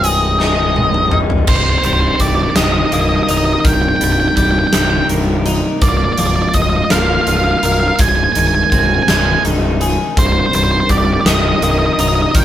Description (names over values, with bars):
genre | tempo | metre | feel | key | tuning
post-rock | 55 BPM (dotted quarters) | 6/8 | straight | C minor | A4 = 441 Hz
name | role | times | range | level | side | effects
octave-fuzz lead guitar | melody | 0.0-12.4 s | C5 to Ab5 | -16 LUFS | right 1 dB | distortion
dark analog pad | sustained chords | 0.0-12.4 s | C3 to G5 | -24 LUFS | right 2 dB | chorus
twelve-string electric guitar | arpeggios | 0.0-12.4 s | C2 to Bb4 | -21 LUFS | left 3 dB | none
fuzz fingered electric bass | bass | 0.0-12.4 s | C1 | -17 LUFS | equal | overdrive
huge arena drum kit | drums | 0.0-12.4 s | crash cymbal, hi-hat, kick drum, snare drum, toms | -17 LUFS | equal | none
room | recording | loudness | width
moderate studio reverb, RT60 0.6 s | band playing live in one room | -11 LUFS | side -11 dB against mid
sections
0.0-1.5 A section; 1.5-12.4 B section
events
drum fill 0.4-1.5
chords
0.0 Abmaj7/C; 1.5 Cm7; 5.8 Bb7/C; 8.0 Ab/C; 10.2 Cm7